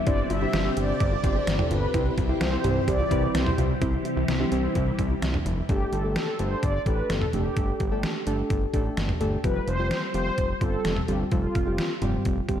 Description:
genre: synth-pop.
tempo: 128 BPM.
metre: 4/4.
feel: straight.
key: unclear.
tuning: A4 = 437 Hz.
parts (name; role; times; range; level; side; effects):
phased string machine; sustained chords; 0.0-5.7 s; C3 to G4; -31 LUFS; left 1 dB; ensemble chorus, phaser.
soft round pluck; arpeggios; 0.0-5.7 s; C4 to G4; -35 LUFS; right 3 dB; chorus, analog delay.
mellow synth brass; melody; 0.1-12.2 s; F4 to E5; -30 LUFS; equal; chorus, analog delay.
warm analog keys; accompaniment; 0.1-12.6 s; G3 to C5; -30 LUFS; equal; chorus.
fat analog bass; bass; 0.1-12.6 s; F1 to C2; -28 LUFS; equal; none.
detuned 8-bit digital drum machine; drums; 0.1-12.6 s; cowbell, hi-hat, kick drum, snare drum, toms; -28 LUFS; equal; none.
room: moderate lush hall reverb, RT60 1.9 s, digital ambience.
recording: dreamy mix soaked in reverb.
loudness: -23 LUFS.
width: side -10 dB against mid.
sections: 0.0-3.8 A section; 3.8-5.7 B section; 5.7-12.6 C section.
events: none.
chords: 0.1 Gsus4; 1.9 C; 5.7 Gsus2; 9.4 Fsus2.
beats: | 0.07 0.54 1.00 1.47 | 1.94 2.41 2.88 3.35 | 3.82 4.29 4.75 5.22 | 5.69 6.16 6.63 7.10 | 7.57 8.04 8.50 8.97 | 9.44 9.91 10.38 10.85 | 11.32 11.79 12.25.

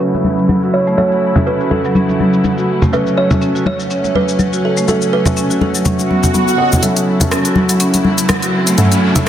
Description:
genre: afro house.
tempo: 123 BPM.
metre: 4/4.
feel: swing 56% on 16ths.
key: F# minor.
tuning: A4 = 440 Hz.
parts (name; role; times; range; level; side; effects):
kalimba; melody; 0.0-6.3 s; A4 to C#5; -19 LUFS; right 3 dB; vintage 12-bit sampler grit, dub echo.
dark chamber string section; sustained chords; 0.0-9.3 s; C#3 to E4; -21 LUFS; equal; low-pass filter.
marimba with medium mallets; arpeggios; 0.0-9.2 s; C#3 to F#4; -17 LUFS; right 1 dB; low-pass filter.
felt-muted upright piano; stabs; 0.0-9.3 s; C#4 to E5; -23 LUFS; left 3 dB; low-pass filter, dub echo.
afro-pop drum kit; drums; 0.0-9.3 s; hi-hat, rim click, shaker, toms; -19 LUFS; left 1 dB; small room ambience, soft clipping on snare.
congas; percussion; 0.1-9.2 s; none; -16 LUFS; left 1 dB; none.
swell and riser; sound effects; 6.0-9.3 s; none; -20 LUFS; right 1 dB; none.
room: moderate lush hall reverb, RT60 1.7 s, small room ambience.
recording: dense, heavily limited modern master, low-pass filter.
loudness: -11 LUFS.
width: side -10 dB against mid.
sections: 0.0-6.8 A section; 6.8-9.3 B section.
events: filter sweep on marimba 0.0-6.8; filter sweep on string section 0.0-6.8; filter sweep 0.0-6.8; swell 6.0-6.8; build-up 6.8-9.3; riser 6.8-9.3.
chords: 0.0 F#m7.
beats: 0.00 0.49 | 0.98 1.47 1.95 2.44 | 2.93 3.42 3.90 4.39 | 4.88 5.37 5.86 6.34 | 6.83 7.32 7.81 8.29 | 8.78 9.27.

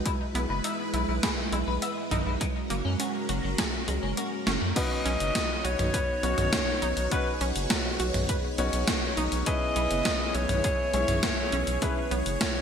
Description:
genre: synthwave.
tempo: 102 BPM.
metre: 4/4.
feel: straight.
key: B major.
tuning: A4 = 440 Hz.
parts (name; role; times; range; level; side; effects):
string machine, full ensemble; sustained chords; 0.0-12.6 s; G#3 to C#5; -33 LUFS; right 1 dB; phaser, ensemble chorus, sidechain pumping.
round analog bass; bass; 0.0-12.4 s; F#1 to F#2; -30 LUFS; equal; none.
wide unison pluck; arpeggios; 0.1-12.6 s; G#3 to B4; -36 LUFS; right 3 dB; ping-pong delay.
clean electric guitar; riff; 0.1-4.7 s; F#3 to E5; -36 LUFS; left 5 dB; analog chorus, ping-pong delay.
electronic kick drum; drums; 0.1-12.5 s; none; -32 LUFS; equal; none.
gated 80s digital drum machine; drums; 0.1-12.5 s; crash cymbal, hi-hat, snare drum, toms; -30 LUFS; equal; gated reverb, gated reverb snare, overdrive.
warm alto saxophone; melody; 4.8-12.6 s; F#4 to D#5; -31 LUFS; left 1 dB; vintage 12-bit sampler grit, digital delay.
bright grand piano; stabs; 4.8-12.0 s; C#4 to C#5; -34 LUFS; left 4 dB; vintage 12-bit sampler grit, ping-pong delay.
room: moderate lush hall reverb, RT60 1.8 s.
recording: bright 1980s-style digital production.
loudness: -25 LUFS.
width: side -7 dB against mid.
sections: 0.0-4.8 A section; 4.8-12.6 B section.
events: kick drops out 4.2-4.8; drum fill 4.5.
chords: 0.1 Emaj7; 2.4 F#add9; 4.8 Badd9; 9.5 C#m7.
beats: | 0.06 0.64 1.23 1.82 | 2.41 3.00 3.59 4.17 | 4.76 5.35 5.94 6.53 | 7.12 7.70 8.29 8.88 | 9.47 10.06 10.64 11.23 | 11.82 12.41.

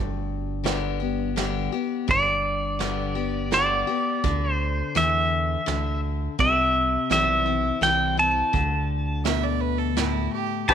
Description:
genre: honky-tonk and classic country.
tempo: 84 BPM.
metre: 3/4.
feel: straight.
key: G major.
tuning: A4 = 436 Hz.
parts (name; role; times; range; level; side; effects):
picked steel-string acoustic guitar; accompaniment; 0.0-10.7 s; G2 to G4; -27 LUFS; left 8 dB; none.
rubbery square bass; bass; 0.0-10.7 s; G1 to E2; -28 LUFS; right 2 dB; none.
soft brush drum kit; drums; 0.7-10.7 s; hi-hat, kick drum, snare drum; -29 LUFS; right 6 dB; none.
pedal steel guitar; melody; 2.1-10.7 s; D5 to A5; -22 LUFS; right 1 dB; slapback echo.
clear fiddle; second line; 9.2-10.7 s; E4 to E5; -29 LUFS; right 15 dB; none.
pedal steel guitar; sustained chords; 10.7 s; G4 to B4; -20 LUFS; left 14 dB; lush chorus.
room: light reverb.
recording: 1960s-style stereo with parts hard left and right.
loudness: -21 LUFS.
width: side -8 dB against mid.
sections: 0.0-2.1 A section; 2.1-10.7 A section.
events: none.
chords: 0.0 G; 4.2 Dsus2; 6.4 C; 8.5 D5.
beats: 0.66 1.37 | 2.09 2.80 3.52 | 4.24 4.95 5.67 | 6.39 7.10 7.82 | 8.54 9.25 9.97 | 10.69.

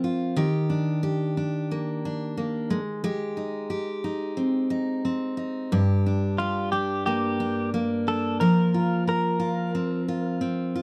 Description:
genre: acoustic pop.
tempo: 90 BPM.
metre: 4/4.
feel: swing 60% on 16ths.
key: G minor.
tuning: A4 = 440 Hz.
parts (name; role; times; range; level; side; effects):
picked steel-string acoustic guitar; accompaniment; 0.0-10.8 s; G2 to Bb4; -27 LUFS; equal; none.
direct-recorded clean electric guitar; melody; 6.4-10.4 s; F4 to Bb4; -30 LUFS; equal; none.
room: moderate booth ambience, RT60 0.2 s.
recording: dry, close 1970s-style studio recording.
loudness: -26 LUFS.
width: mono.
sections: 0.0-10.8 A section.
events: none.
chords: 0.4 Ebmaj7; 2.7 Abmaj7; 5.7 Gm; 8.4 Fsus4.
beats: | 0.37 1.03 1.71 2.37 | 3.04 3.71 4.38 5.05 | 5.72 6.39 7.06 7.73 | 8.40 9.07 9.74 10.41.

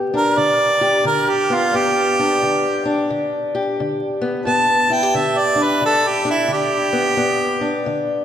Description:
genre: acoustic country blues, solo or duo.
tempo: 88 BPM.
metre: 4/4.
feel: swing 63% on 8ths.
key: G major.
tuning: A4 = 440 Hz.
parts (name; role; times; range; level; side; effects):
fingerpicked old ladder-braced acoustic guitar; accompaniment; 0.0-8.2 s; G2 to G4; -20 LUFS; left 2 dB; none.
clear harmonica; melody; 0.2-7.8 s; E4 to A5; -17 LUFS; right 2 dB; none.
room: wet church reverb, RT60 3.7 s.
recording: recorded in a church or concert hall, vinyl crackle.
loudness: -15 LUFS.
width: side -9 dB against mid.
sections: 0.0-8.2 A section.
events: harmonica solo 0.0-8.2.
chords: 0.0 G.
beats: 0.37 1.05 | 1.73 2.41 3.09 3.77 | 4.46 5.14 5.82 6.50 | 7.18 7.86.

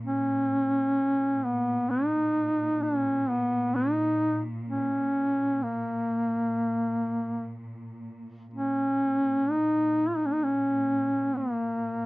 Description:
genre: caucasian folk, Caucasian lament.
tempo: 64 BPM.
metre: 3/4.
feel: uneven beats, rubato.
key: Bb phrygian.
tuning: A4 = 435 Hz.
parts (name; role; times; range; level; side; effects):
dark chamber string section; drone; 0.0-12.1 s; Bb2; -37 LUFS; equal; stereo widening, cassette tape.
warm duduk; melody; 0.1-12.1 s; Bb3 to F4; -25 LUFS; equal; none.
room: moderate small room reverb, RT60 0.5 s.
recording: home recording on cassette, nothing above 7.5 kHz.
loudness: -24 LUFS.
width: side -23 dB against mid.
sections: 0.0-8.5 A section; 8.5-12.1 B section.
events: none.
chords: none.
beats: | 0.04 0.97 1.89 | 2.81 3.74 4.67 | 5.61 6.57 7.55 | 8.54 9.51 10.45 | 11.38.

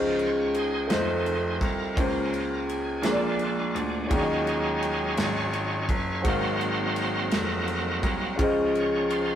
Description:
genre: slow gospel.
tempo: 56 BPM (dotted quarters).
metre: 6/8.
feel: straight.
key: Db major.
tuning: A4 = 440 Hz.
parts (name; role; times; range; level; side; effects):
warm upright piano; accompaniment; 0.0-9.4 s; Ab2 to F5; -27 LUFS; equal; none.
bright tonewheel organ; sustained chords; 0.0-9.4 s; Db3 to F5; -30 LUFS; right 2 dB; slow rotary speaker, overdrive.
bright baby grand piano; bass; 0.0-9.4 s; F1 to Eb2; -31 LUFS; equal; none.
modern studio drum kit; drums; 0.2-9.3 s; kick drum, ride cymbal, snare drum; -32 LUFS; equal; none.
room: moderate stone room reverb, RT60 1.1 s.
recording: rough rehearsal-room recording.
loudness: -24 LUFS.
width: side -10 dB against mid.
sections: 0.0-9.4 A section.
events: tonewheel organ solo 0.0-9.4.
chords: 0.0 Dbmaj9; 0.9 F7; 2.0 Bbm9/Db; 3.0 Bb7; 4.1 Ebm11; 6.2 Ab13; 8.4 Dbmaj9.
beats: 0.90 | 1.97 3.04 | 4.11 5.18 | 6.25 7.32 | 8.39.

